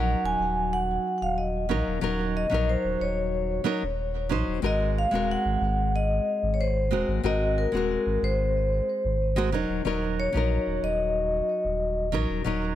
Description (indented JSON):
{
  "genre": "sunset chillout",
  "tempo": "92 BPM",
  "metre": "4/4",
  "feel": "straight",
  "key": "Eb dorian",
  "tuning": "A4 = 440 Hz",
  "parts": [
    { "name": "vibraphone with medium mallets", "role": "melody", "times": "0.0-12.1 s", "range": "Bb4 to Ab5", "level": "-28 LUFS", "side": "left 1 dB", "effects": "tape echo" },
    { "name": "nylon-string guitar", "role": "accompaniment", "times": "0.0-12.8 s", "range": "Gb3 to C5", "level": "-29 LUFS", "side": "equal", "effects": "auto-pan, digital delay" },
    { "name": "warm sub bass", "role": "bass", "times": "0.0-12.8 s", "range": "Eb1 to Bb1", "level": "-28 LUFS", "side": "equal", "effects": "none" }
  ],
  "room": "light reverb, studio reverb",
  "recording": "none",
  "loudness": "-24 LUFS",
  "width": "side -12 dB against mid",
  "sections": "0.0-12.8 A section",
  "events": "none",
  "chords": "0.0 Ebm7; 4.6 Ab9; 9.5 Ebm7",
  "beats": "0.07 0.72 1.37 | 2.02 2.68 3.33 3.98 | 4.63 5.28 5.94 6.59 | 7.24 7.89 8.54 9.20 | 9.85 10.50 11.15 11.81 | 12.46"
}